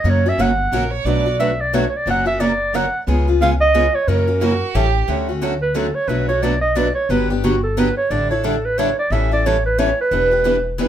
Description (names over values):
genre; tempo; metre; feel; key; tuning
acoustic string swing (jazz manouche); 179 BPM; 3/4; swing 60% on 8ths; D major from 5.1 s; A4 = 440 Hz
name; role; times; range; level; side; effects
mellow clarinet; melody; 0.0-10.8 s; D4 to F#5; -18 LUFS; right 2 dB; plate reverb
picked acoustic archtop guitar; accompaniment; 0.0-10.9 s; B2 to B4; -24 LUFS; right 6 dB; none
picked steel-string acoustic guitar; accompaniment; 0.0-10.9 s; B2 to A4; -22 LUFS; left 5 dB; none
upright bass; bass; 0.0-10.9 s; E1 to F#2; -21 LUFS; left 1 dB; none
warm violin; second line; 0.7-1.3, 4.4-5.1 s; F#4 to D5; -23 LUFS; right 6 dB; none
room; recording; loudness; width
moderate studio ambience, RT60 0.5 s; none; -15 LUFS; side -10 dB against mid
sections
0.0-5.1 A section; 5.1-10.9 B section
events
clarinet solo 5.1-10.9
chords
0.0 F#; 1.0 Bm7; 2.1 F#; 3.1 C#7; 4.1 F#7; 4.7 A7; 5.1 Dmaj7; 6.1 Bm7; 7.1 Gmaj7; 8.1 A7sus4; 9.1 A7; 10.1 Em7